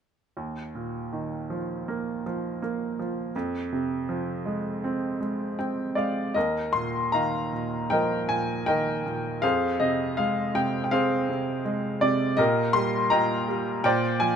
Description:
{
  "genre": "classical, lyrical solo piano",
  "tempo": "80 BPM",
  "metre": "4/4",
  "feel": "uneven beats, rubato",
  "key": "Eb major",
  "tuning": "A4 = 441 Hz",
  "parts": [
    { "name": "clear baby grand piano", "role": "solo", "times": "0.4-14.4 s", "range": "Eb2 to C6", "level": "-24 LUFS", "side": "equal", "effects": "none" }
  ],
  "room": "light reverb",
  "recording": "minimal, uncompressed stereo recording",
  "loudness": "-24 LUFS",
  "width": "side -7 dB against mid",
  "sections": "0.4-6.4 A section; 6.4-14.4 B section",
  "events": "grand piano fill 5.2-6.4",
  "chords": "0.4 Ebsus2; 3.3 Fm; 6.4 Ebsus2; 9.4 Fm; 12.4 Eb/Bb; 13.9 Bbadd9",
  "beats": "| 0.36 1.12 1.87 2.62 | 3.34 4.08 4.82 5.58 | 6.36 7.14 7.92 8.68 | 9.44 10.18 10.92 11.66 | 12.39 13.12 13.85"
}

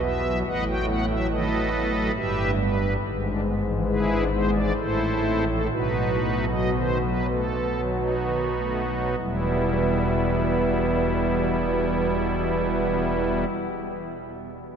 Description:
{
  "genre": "classical, chorale-style piece for pipe organ",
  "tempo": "45-72 BPM",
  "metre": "3/4",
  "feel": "rubato",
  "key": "E minor",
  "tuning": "A4 = 440 Hz",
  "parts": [
    { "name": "pipe organ, strings celeste", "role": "solo", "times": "0.0-13.5 s", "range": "E1 to G5", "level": "-22 LUFS", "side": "equal", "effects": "none" }
  ],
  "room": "wet cathedral reverb, RT60 5.7 s",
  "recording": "dark, warm production",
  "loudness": "-22 LUFS",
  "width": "side -7 dB against mid",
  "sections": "0.0-9.2 A section; 9.2-13.2 B section",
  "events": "slowing down 1.7-9.2",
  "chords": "0.5 B7/A; 2.1 Em/G; 3.0 E7/G#; 4.8 Am; 5.7 B7; 9.2 Em",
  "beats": "| 0.46 1.30 2.14 | 2.99 3.86 4.76 | 5.70 6.73 7.89 | 9.18 10.50 11.84"
}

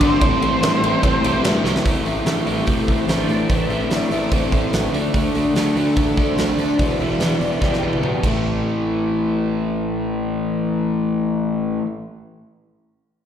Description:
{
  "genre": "classic rock",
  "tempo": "146 BPM",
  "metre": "4/4",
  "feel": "straight",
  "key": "A minor",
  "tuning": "A4 = 440 Hz",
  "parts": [
    { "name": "octave-fuzz lead guitar", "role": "melody", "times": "0.0-1.4 s", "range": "C5", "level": "-21 LUFS", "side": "right 2 dB", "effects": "wah, distortion, slapback echo" },
    { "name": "dark smooth lead guitar", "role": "second line", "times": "0.0-1.4 s", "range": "C4", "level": "-26 LUFS", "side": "equal", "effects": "overdrive, slapback echo" },
    { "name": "barky reed electric piano", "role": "accompaniment", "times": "0.0-1.7 s", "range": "E4 to C5", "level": "-33 LUFS", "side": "left 1 dB", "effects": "none" },
    { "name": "picked steel-string acoustic guitar", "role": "accompaniment", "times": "0.0-11.9 s", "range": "E2 to G4", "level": "-30 LUFS", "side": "left 1 dB", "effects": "none" },
    { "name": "string machine, full ensemble", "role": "sustained chords", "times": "0.0-7.8 s", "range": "F#4 to E5", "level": "-28 LUFS", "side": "equal", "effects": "phaser, ensemble chorus" },
    { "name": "overdriven electric guitar", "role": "riff", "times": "0.0-11.9 s", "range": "E2 to D4", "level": "-20 LUFS", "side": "left 1 dB", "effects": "spring reverb, slapback echo" },
    { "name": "fuzz picked electric bass", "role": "bass", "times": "0.0-11.8 s", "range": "E1 to G2", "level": "-25 LUFS", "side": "equal", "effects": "overdrive" },
    { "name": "huge arena drum kit", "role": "drums", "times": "0.0-8.3 s", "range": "crash cymbal, hi-hat, kick drum, ride cymbal, snare drum, toms", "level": "-22 LUFS", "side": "right 1 dB", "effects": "none" },
    { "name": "cowbell", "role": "percussion", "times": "0.2-1.5 s", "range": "none", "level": "-32 LUFS", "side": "left 1 dB", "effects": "none" }
  ],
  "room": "light reverb",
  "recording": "live gig heard through the venue's PA, recital hall reverb",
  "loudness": "-17 LUFS",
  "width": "side -9 dB against mid",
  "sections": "0.0-1.8 A section; 1.8-8.4 B section; 8.4-11.7 C section",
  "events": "drum fill 1.6, 7.6-8.4; string machine solo 1.8-8.4",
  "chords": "0.2 Am7; 1.8 Am; 4.9 D; 6.8 Em; 8.2 Am",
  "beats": "| 0.21 0.62 1.03 1.44 | 1.85 2.26 2.67 3.08 | 3.49 3.90 4.32 4.73 | 5.14 5.55 5.96 6.37 | 6.79 7.20 7.61 8.02 | 8.44 8.85 9.26 9.67 | 10.08 10.49 10.90 11.32"
}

